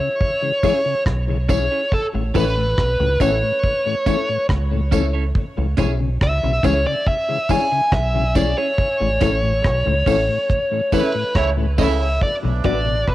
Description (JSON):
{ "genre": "roots reggae", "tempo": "70 BPM", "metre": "4/4", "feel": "straight", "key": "unclear", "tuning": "A4 = 439 Hz", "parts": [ { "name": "bluesy overdriven lead guitar", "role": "melody", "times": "0.0-13.1 s", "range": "A4 to G#5", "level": "-20 LUFS", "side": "equal", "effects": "distortion, cassette tape, tape echo" }, { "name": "mellow tonewheel organ", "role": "accompaniment", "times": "0.0-13.0 s", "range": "A2 to D4", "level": "-26 LUFS", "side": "left 6 dB", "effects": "slow rotary speaker, cassette tape, tape echo" }, { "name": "deep reggae drum kit", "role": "drums", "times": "0.2-13.1 s", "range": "hi-hat, kick drum, rim click", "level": "-20 LUFS", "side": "equal", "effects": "none" }, { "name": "clean electric guitar", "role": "accompaniment", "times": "0.6-12.8 s", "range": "C#4 to D5", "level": "-30 LUFS", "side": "right 8 dB", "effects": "cassette tape, tape echo" }, { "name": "dark upright piano", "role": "stabs", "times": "0.6-12.8 s", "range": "C#4 to D5", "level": "-27 LUFS", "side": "left 6 dB", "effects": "cassette tape" }, { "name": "tambourine", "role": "percussion", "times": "0.6-12.0 s", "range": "none", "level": "-36 LUFS", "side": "right 9 dB", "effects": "none" }, { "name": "deep dub fingered electric bass", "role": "bass", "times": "1.1-13.1 s", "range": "A1 to C#2", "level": "-21 LUFS", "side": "equal", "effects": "tube saturation" }, { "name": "warm horn section", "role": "second line", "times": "10.9-13.1 s", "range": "B2 to E4", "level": "-27 LUFS", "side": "right 8 dB", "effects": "cassette tape, tape echo" } ], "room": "light reverb, small room ambience", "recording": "home recording on cassette", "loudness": "-16 LUFS", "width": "side -15 dB against mid", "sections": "0.0-12.2 A section", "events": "band accent 8.8-12.2", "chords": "0.0 C#m; 1.9 A; 5.4 C#m; 8.8 A; 12.2 Bm" }